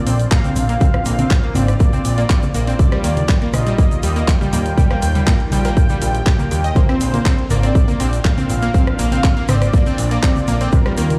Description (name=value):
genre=progressive house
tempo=121 BPM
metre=4/4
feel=straight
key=Bb major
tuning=A4 = 441 Hz
part: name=unison lead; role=melody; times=0.0-11.2 s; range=Bb4 to G5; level=-28 LUFS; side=equal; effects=lush chorus, sidechain pumping, tape echo
part: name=filtered supersaw swell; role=sustained chords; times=0.0-11.2 s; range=D3 to F4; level=-29 LUFS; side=equal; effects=sidechain pumping
part: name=analog pluck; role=arpeggios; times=0.1-11.0 s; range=G3 to Eb5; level=-25 LUFS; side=equal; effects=chorus, sidechain pumping, delay
part: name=fat analog bass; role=bass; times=0.1-11.2 s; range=Ab1 to Eb2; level=-20 LUFS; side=equal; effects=sidechain pumping
part: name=house drum kit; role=drums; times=0.1-11.2 s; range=handclaps, hi-hat, rim click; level=-29 LUFS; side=equal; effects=sidechain pumping on hats
part: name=egg shaker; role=percussion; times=0.1-11.2 s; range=none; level=-38 LUFS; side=equal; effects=none
part: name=electronic kick drum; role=drums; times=0.3-10.8 s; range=none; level=-17 LUFS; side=equal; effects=none
part: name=congas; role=percussion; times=0.3-11.2 s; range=none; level=-26 LUFS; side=equal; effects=sidechain pumping on perc
room=light reverb, digital ambience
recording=played on a big sound system in a bare room, large studio reverb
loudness=-16 LUFS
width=mono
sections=0.0-11.2 A section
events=none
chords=0.0 Bbadd9; 2.8 Ebadd9; 6.8 Bbadd9